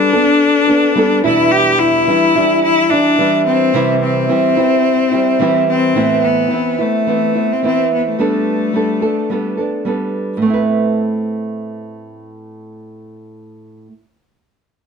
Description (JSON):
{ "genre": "pop", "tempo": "108 BPM", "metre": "4/4", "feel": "swing 55% on 16ths", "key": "A minor", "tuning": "A4 = 439 Hz", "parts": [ { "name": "bright cello", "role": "melody", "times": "0.0-9.8 s", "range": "A3 to G4", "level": "-14 LUFS", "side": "left 6 dB", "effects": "ping-pong delay" }, { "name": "nylon-string guitar", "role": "accompaniment", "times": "0.0-14.0 s", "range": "E2 to B4", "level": "-16 LUFS", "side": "right 4 dB", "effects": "none" } ], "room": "moderate studio reverb, RT60 0.6 s", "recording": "dark, warm production", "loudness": "-12 LUFS", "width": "side -6 dB against mid", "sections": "0.0-6.0 A section; 6.0-10.4 B section; 10.4-12.6 C section", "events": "none", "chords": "0.0 Gadd9; 1.2 Em7; 3.7 C; 6.0 Amadd9; 8.2 Gadd9; 10.4 Amadd9" }